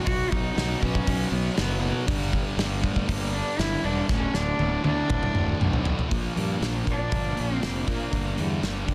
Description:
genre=quiet-loud alternative rock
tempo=119 BPM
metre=4/4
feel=straight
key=unclear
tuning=A4 = 440 Hz
part: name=dark cello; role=melody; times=0.0-8.9 s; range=G3 to F#4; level=-33 LUFS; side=equal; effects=tape echo
part: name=fuzz guitar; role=riff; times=0.0-8.9 s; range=D2 to B3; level=-32 LUFS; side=equal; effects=distortion
part: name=fuzz fingered electric bass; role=bass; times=0.1-8.9 s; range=D1 to Bb2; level=-32 LUFS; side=equal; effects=overdrive
part: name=loose indie drum kit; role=drums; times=0.1-8.9 s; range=hi-hat, kick drum, snare drum, toms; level=-30 LUFS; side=equal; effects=none
part: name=mellow electric guitar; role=arpeggios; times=6.1-8.9 s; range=G2 to Bb4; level=-36 LUFS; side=equal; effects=analog chorus
room=light reverb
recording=dense, heavily limited modern master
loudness=-26 LUFS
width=mono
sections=0.0-6.1 A section; 6.1-8.9 B section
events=drum fill 4.1-6.1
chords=0.1 B; 2.1 G5; 4.1 D5; 6.1 Bb; 8.1 Gm

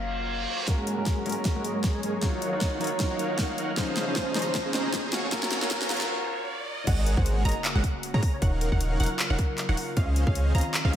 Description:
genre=future bass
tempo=155 BPM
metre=4/4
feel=swing 56% on 16ths, half-time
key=unclear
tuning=A4 = 440 Hz
part: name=soft octave-layered synth lead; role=melody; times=0.0-0.6, 6.9-10.7 s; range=Bb4 to F5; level=-38 LUFS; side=left 3 dB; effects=chorus, sidechain pumping, tape echo
part: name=clear concert grand piano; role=accompaniment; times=0.0-6.9 s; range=F3 to Db5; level=-33 LUFS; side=left 1 dB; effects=sidechain pumping, tape echo
part: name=airy breathy pad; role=sustained chords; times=0.0-11.0 s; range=Db3 to Db5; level=-38 LUFS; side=equal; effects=chorus, sidechain pumping
part: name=warm 808-style bass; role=bass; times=0.0-0.5, 6.9-10.9 s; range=Eb1 to Ab2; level=-25 LUFS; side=equal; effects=sidechain pumping
part: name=reverse cymbal, riser and sub drop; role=sound effects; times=0.0-8.4 s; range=none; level=-37 LUFS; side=right 1 dB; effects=none
part: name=dense compressed supersaw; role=riff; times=0.7-10.9 s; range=Ab3 to Db6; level=-32 LUFS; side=right 1 dB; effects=cassette tape, sidechain pumping, low-pass filter, tape echo
part: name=electronic kick drum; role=drums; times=0.7-11.0 s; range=none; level=-27 LUFS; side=equal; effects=none
part: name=pop drum kit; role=drums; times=0.7-11.0 s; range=crash cymbal, handclaps, hi-hat, snare drum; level=-31 LUFS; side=equal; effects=low-pass filter on snare, low-pass filter on hats, low-pass filter on cymbals
part: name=wide unison pluck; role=arpeggios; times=6.9-10.9 s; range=F5 to Bb5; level=-36 LUFS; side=right 2 dB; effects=sidechain pumping
room=moderate lush hall reverb, RT60 1.8 s, digital ambience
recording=dreamy mix soaked in reverb, high-pass filter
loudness=-24 LUFS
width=side -10 dB against mid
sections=0.7-6.9 A section; 6.9-11.0 B section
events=reverse cymbal 0.0-0.7; build-up 0.7-6.9; drum fill 0.7-6.1; filter sweep on supersaw synth 0.7-6.9; filter sweep 0.7-6.9; break 6.1-6.9; drop 6.9-11.0; impact 6.9-8.4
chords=0.0 Gbmaj7; 0.7 Ab9sus4; 2.2 Ebm9; 3.8 Dbmaj9; 5.1 Gbmaj7; 6.9 Ab9sus4; 8.4 Ebm9; 10.0 Dbmaj9

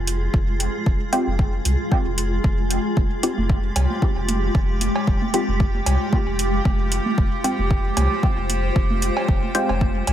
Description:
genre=dub techno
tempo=114 BPM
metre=4/4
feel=swing 55% on 16ths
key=F minor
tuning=A4 = 441 Hz
part: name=granular cloud pad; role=sustained chords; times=0.0-10.1 s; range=Ab3 to C5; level=-26 LUFS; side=equal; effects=built-in reverb, sidechain pumping
part: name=warm sub bass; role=bass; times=0.0-10.1 s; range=F1 to C2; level=-23 LUFS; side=equal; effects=sidechain pumping
part: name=electronic hi-hat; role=drums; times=0.1-10.1 s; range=none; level=-25 LUFS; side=right 1 dB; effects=overdrive
part: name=electronic kick drum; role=drums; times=0.3-9.9 s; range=none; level=-21 LUFS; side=equal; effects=overdrive
part: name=filtered dub chord stab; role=stabs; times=1.1-9.7 s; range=Ab3 to G4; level=-26 LUFS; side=equal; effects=chorus, phaser, sidechain pumping, dub echo
part: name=congas and cowbell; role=percussion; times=3.0-10.1 s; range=none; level=-30 LUFS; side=right 4 dB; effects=sidechain pumping on perc, dub echo
part: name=metallic inharmonic drone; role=texture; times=3.8-10.1 s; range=G4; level=-29 LUFS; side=right 2 dB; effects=chorus, built-in reverb, sidechain pumping
room=light reverb, digital ambience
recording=none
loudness=-18 LUFS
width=side -11 dB against mid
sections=0.0-10.1 A section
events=filter sweep on synth stab 0.0-10.1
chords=0.0 Fmadd9

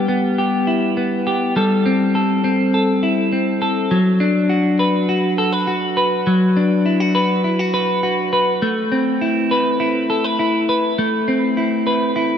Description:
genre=dream pop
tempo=102 BPM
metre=4/4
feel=straight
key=unclear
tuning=A4 = 440 Hz
part: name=clean electric guitar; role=solo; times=0.0-12.4 s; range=F#3 to B4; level=-15 LUFS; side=left 1 dB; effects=wide subtle chorus, tape echo
room=wet huge ambient reverb, RT60 4.2 s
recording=nothing above 10.5 kHz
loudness=-15 LUFS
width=side -8 dB against mid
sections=0.0-3.9 A section; 3.9-12.4 B section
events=none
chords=0.0 Em; 1.6 C6; 3.9 D6/F#; 8.6 Amadd9

